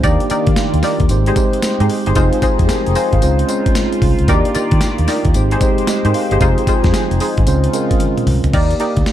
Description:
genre	R&B, new jack swing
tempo	113 BPM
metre	4/4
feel	swing 64% on 16ths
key	Eb major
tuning	A4 = 439 Hz
part	mellow tine electric piano	accompaniment	0.0-9.1 s	Ab3 to Ab5	-19 LUFS	right 2 dB	medium stereo tremolo
part	phased analog pad	sustained chords	0.0-8.5 s	Db3 to D5	-22 LUFS	equal	phaser, chorus
part	funky polysynth comp	stabs	0.0-9.0 s	Eb4 to D5	-21 LUFS	left 2 dB	chorus, tape echo
part	vintage muted fingered electric bass	bass	0.0-9.0 s	F1 to Eb3	-16 LUFS	equal	none
part	breakbeat sampler-style drum kit	drums	0.0-9.1 s	crash cymbal, hi-hat, kick drum, snare drum, tambourine, toms	-17 LUFS	equal	none
room	light reverb, digital ambience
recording	dark, warm production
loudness	-12 LUFS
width	side -12 dB against mid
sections	0.0-8.5 A section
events	drum fill 8.0-8.5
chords	0.0 Ebmaj7; 1.1 Abmaj7; 2.2 Fm7; 3.2 Dbmaj7; 4.3 Ebmaj7; 5.3 Abmaj7; 6.4 Fm7; 7.5 Dbmaj7; 8.5 Ebmaj7

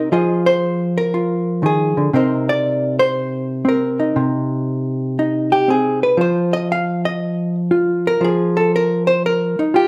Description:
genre	solo jazz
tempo	118 BPM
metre	4/4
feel	swing 67% on 8ths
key	unclear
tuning	A4 = 440 Hz
part	hollow-body jazz guitar	solo	0.0-9.9 s	C3 to F5	-18 LUFS	equal	none
room	moderate large studio reverb, RT60 0.9 s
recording	band playing live in one room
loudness	-18 LUFS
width	mono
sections	0.0-9.9 A section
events	hollow-body jazz guitar solo 0.0-9.9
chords	0.1 Fm7; 2.1 Cm7; 6.2 F7(no3)

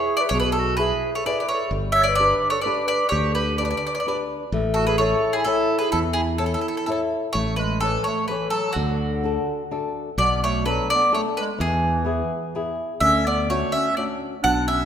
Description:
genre	italian folk, Italian serenade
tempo	128 BPM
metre	3/4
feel	straight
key	A major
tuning	A4 = 440 Hz
part	mandolin	melody	0.0-14.9 s	F#4 to F#5	-22 LUFS	equal	none
part	warm clarinet	second line	0.0-14.9 s	D3 to C#5	-28 LUFS	right 4 dB	none
part	flamenco guitar	accompaniment	0.0-14.9 s	B2 to C#5	-27 LUFS	left 4 dB	none
part	modern bright fingered electric bass	bass	0.3-14.9 s	G1 to E2	-27 LUFS	equal	none
room	wet concert hall reverb, RT60 1.9 s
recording	minimal, uncompressed stereo recording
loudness	-20 LUFS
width	side -8 dB against mid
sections	0.0-7.4 A section; 7.4-14.9 B section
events	none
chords	0.0 E; 1.7 G; 4.5 A; 7.4 Aadd9; 8.8 D; 10.2 Bm7; 11.6 E; 13.0 Dmaj7

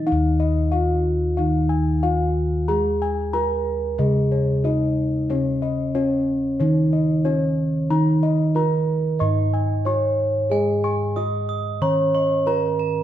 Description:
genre	Javanese gamelan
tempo	92 BPM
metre	4/4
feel	straight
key	Eb slendro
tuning	A4 = 443 Hz
part	gamelan-type bronze metallophone	melody	0.0-13.0 s	Db4-45c to Eb5	-22 LUFS	right 1 dB	none
part	gamelan-type bronze metallophone	accompaniment	0.0-13.0 s	Db3-45c to Eb4	-26 LUFS	right 2 dB	none
part	gamelan-type bronze metallophone	arpeggios	0.0-0.1, 10.5-13.0 s	Ab5-35c to Eb6	-31 LUFS	right 4 dB	none
part	gamelan-type bossed gongs	bass	0.0-13.0 s	Eb2 to Ab4-35c	-24 LUFS	left 1 dB	none
part	gamelan-type bossed gongs	arpeggios	0.1-12.8 s	Db5-45c to Db6-45c	-28 LUFS	left 7 dB	none
room	moderate recital hall reverb, RT60 1.4 s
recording	none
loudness	-18 LUFS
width	side -11 dB against mid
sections	0.1-13.0 A section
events	none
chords	none

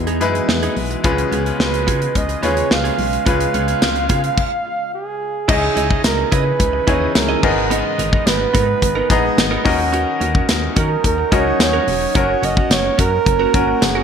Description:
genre	1980s-style pop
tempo	108 BPM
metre	4/4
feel	straight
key	unclear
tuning	A4 = 440 Hz
part	warm flugelhorn	melody	0.0-14.0 s	G#4 to E#5	-20 LUFS	right 6 dB	ping-pong delay
part	bright grand piano	accompaniment	0.0-14.0 s	G#2 to A#5	-21 LUFS	left 3 dB	none
part	glassy FM pad	sustained chords	0.0-14.0 s	C#3 to D#5	-27 LUFS	left 2 dB	ensemble chorus, built-in reverb
part	solid FM bass	bass	0.0-14.0 s	E1 to D#3	-23 LUFS	left 1 dB	none
part	direct-recorded clean electric guitar	riff	0.1-14.0 s	B3 to D#5	-26 LUFS	right 6 dB	analog chorus, ping-pong delay
part	modern studio drum kit	drums	0.1-13.9 s	crash cymbal, hi-hat, kick drum, snare drum, tambourine	-18 LUFS	equal	gated reverb
room	wet plate reverb, RT60 1.1 s, small room ambience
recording	bright 1980s-style digital production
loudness	-14 LUFS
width	side -7 dB against mid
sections	0.0-5.5 A section; 5.5-14.0 B section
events	stop 4.4-5.5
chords	0.0 Emaj7; 1.0 C#7; 5.5 C#madd9; 7.4 G#madd9; 9.7 D#m7; 12.2 F#

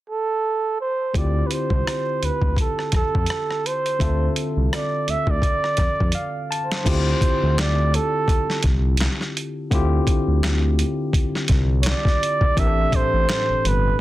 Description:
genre	R&B, neo-soul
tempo	84 BPM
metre	4/4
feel	swing 56% on 16ths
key	D minor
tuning	A4 = 440 Hz
part	breathy flugelhorn	melody	0.1-14.0 s	A4 to E5	-23 LUFS	right 3 dB	plate reverb
part	barky tine electric piano	accompaniment	1.1-14.0 s	A2 to A5	-26 LUFS	left 2 dB	overdrive, plate reverb
part	smooth gliding synth bass	bass	1.1-13.9 s	G1 to F2	-21 LUFS	equal	none
part	boom bap sampler-style drum kit	drums	1.1-13.8 s	crash cymbal, handclaps, hi-hat, kick drum, rim click, snare drum	-22 LUFS	equal	soft clipping on snare
room	light reverb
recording	dense, heavily limited modern master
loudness	-18 LUFS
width	side -16 dB against mid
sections	0.0-1.1 A section; 1.1-6.9 B section; 6.9-14.0 C section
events	tine electric piano fill 5.8-6.9; drum fill 6.1-6.9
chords	0.0 N.C.; 1.1 Dm11; 12.6 Am11

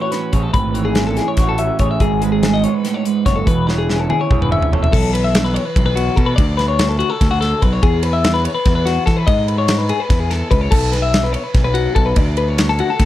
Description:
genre	math rock and midwest emo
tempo	290 BPM (eighths)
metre	7/8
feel	straight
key	E major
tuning	A4 = 441 Hz
part	electric guitar through a small old amp	accompaniment	0.0-6.4 s	E2 to A4	-21 LUFS	right 8 dB	plate reverb
part	twelve-string electric guitar	arpeggios	0.0-13.1 s	F#4 to E5	-19 LUFS	left 5 dB	spring reverb, plate reverb
part	modern studio drum kit	drums	0.1-13.1 s	crash cymbal, hi-hat, kick drum, ride cymbal, snare drum, toms	-18 LUFS	equal	none
part	fuzz picked electric bass	bass	0.3-13.1 s	E1 to E3	-18 LUFS	equal	overdrive
room	light reverb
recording	dark, warm production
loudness	-14 LUFS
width	side -13 dB against mid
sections	0.0-4.9 A section; 4.9-13.1 B section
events	drum fill 3.7-4.9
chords	0.0 Amaj7; 2.0 G#m7; 3.5 E6; 4.9 B7sus4; 6.4 Dmaj7; 7.8 E; 10.7 B7sus4; 12.2 Dmaj7

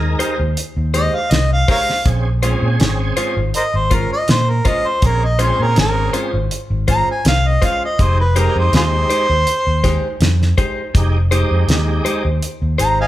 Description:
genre	straight-eighth soul blues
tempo	81 BPM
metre	4/4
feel	swing 53% on 16ths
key	F minor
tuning	A4 = 440 Hz
part	bright tonewheel organ	accompaniment	0.0-12.2 s	Ab3 to Bb4	-24 LUFS	right 2 dB	slow rotary speaker, overdrive, chorus vibrato
part	fingered electric bass	bass	0.0-13.1 s	F1 to Bb2	-17 LUFS	equal	none
part	direct-recorded clean electric guitar	stabs	0.2-13.0 s	Ab3 to C5	-23 LUFS	left 1 dB	spring reverb
part	damped 70s drum kit	drums	0.2-13.0 s	hi-hat, kick drum, snare drum	-18 LUFS	equal	none
part	mellow harmonica	melody	1.0-13.1 s	F4 to Bb5	-18 LUFS	equal	none
room	moderate large studio reverb, RT60 0.9 s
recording	band playing live in one room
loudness	-14 LUFS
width	side -14 dB against mid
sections	0.0-13.1 A section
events	harmonica solo 0.0-13.1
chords	0.0 Fm9; 2.1 Bbm9; 8.0 Fm9

